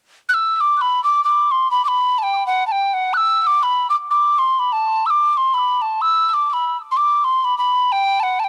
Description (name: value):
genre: celtic folk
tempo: 126 BPM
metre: 3/4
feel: swing 57% on 8ths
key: unclear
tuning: A4 = 441 Hz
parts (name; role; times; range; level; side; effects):
- mellow hollow tin whistle; melody; 0.3-8.5 s; F#5 to F#6; -17 LUFS; equal; analog delay
room: light reverb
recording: dry, gritty hardware recording, transformer saturation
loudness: -17 LUFS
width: mono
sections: 0.3-8.5 A section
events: none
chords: none